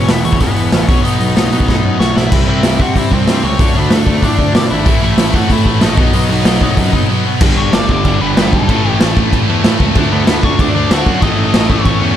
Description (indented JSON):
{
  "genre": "punk rock",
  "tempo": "188 BPM",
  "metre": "4/4",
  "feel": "straight",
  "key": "unclear",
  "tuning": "A4 = 440 Hz",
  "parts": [
    { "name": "nasal lead guitar with a parked wah", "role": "melody", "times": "0.0-12.2 s", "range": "A3 to F#5", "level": "-20 LUFS", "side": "left 3 dB", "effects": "overdrive, ping-pong delay" },
    { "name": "distorted electric guitar", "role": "riff", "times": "0.0-12.2 s", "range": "E2 to D4", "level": "-21 LUFS", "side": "left 13 dB", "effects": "overdrive" },
    { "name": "sludgy distorted guitar", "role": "riff", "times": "0.0-12.2 s", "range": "E2 to D4", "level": "-18 LUFS", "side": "right 12 dB", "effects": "overdrive" },
    { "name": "fuzz picked electric bass", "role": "bass", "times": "0.0-12.1 s", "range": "E1 to C3", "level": "-18 LUFS", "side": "equal", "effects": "overdrive" },
    { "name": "raw garage drum kit", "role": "drums", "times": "0.1-11.9 s", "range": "crash cymbal, hi-hat, kick drum, snare drum", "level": "-13 LUFS", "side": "equal", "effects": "none" },
    { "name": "high-gain distorted guitar", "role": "riff", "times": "4.9-12.2 s", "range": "G2 to D4", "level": "-21 LUFS", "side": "equal", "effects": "distortion" }
  ],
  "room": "little or no reverb",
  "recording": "none",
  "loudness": "-10 LUFS",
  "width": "side -10 dB against mid",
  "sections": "0.0-2.3 A section; 2.3-7.4 B section; 7.4-12.2 C section",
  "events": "drum fill 1.7-2.3; break 7.1-7.4",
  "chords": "0.0 E5; 0.9 B; 2.3 C; 3.6 D5; 4.9 A5; 6.0 B; 7.4 G; 8.7 A5; 10.0 D; 11.2 A",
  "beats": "0.09 0.41 0.73 | 1.05 1.37 1.69 2.00 | 2.32 2.64 2.96 3.28 | 3.60 3.92 4.24 4.55 | 4.87 5.19 5.51 5.83 | 6.15 6.46 6.78 7.10 | 7.42 7.74 8.05 8.37 | 8.69 9.01 9.33 9.64 | 9.96 10.28 10.60 10.91 | 11.23 11.55 11.87"
}